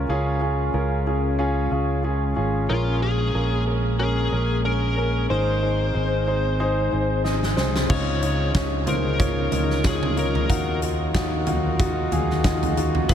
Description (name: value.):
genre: piano-driven pop.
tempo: 92 BPM.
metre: 4/4.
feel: swing 56% on 16ths.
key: Db major.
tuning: A4 = 440 Hz.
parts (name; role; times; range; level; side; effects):
clear concert grand piano; accompaniment; 0.0-13.1 s; Ab2 to Eb5; -25 LUFS; equal; none.
airy breathy pad; sustained chords; 0.0-13.1 s; Db3 to F5; -31 LUFS; equal; chorus.
fingered electric bass; bass; 0.0-13.1 s; Ab1 to F2; -24 LUFS; equal; none.
biting lead guitar; melody; 2.7-13.1 s; F4 to Db5; -28 LUFS; left 3 dB; overdrive.
huge arena drum kit; drums; 7.2-13.1 s; crash cymbal, hi-hat, kick drum, snare drum, toms; -24 LUFS; equal; none.
room: moderate huge ambient reverb, RT60 8.7 s.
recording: dreamy mix soaked in reverb.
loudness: -20 LUFS.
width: side -9 dB against mid.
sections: 0.0-7.9 A section; 7.9-13.1 B section.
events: drum fill 7.2-7.9.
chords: 0.0 Db; 2.7 Bbm7; 5.3 Ab; 7.9 Dbadd9; 10.5 Ebmadd9.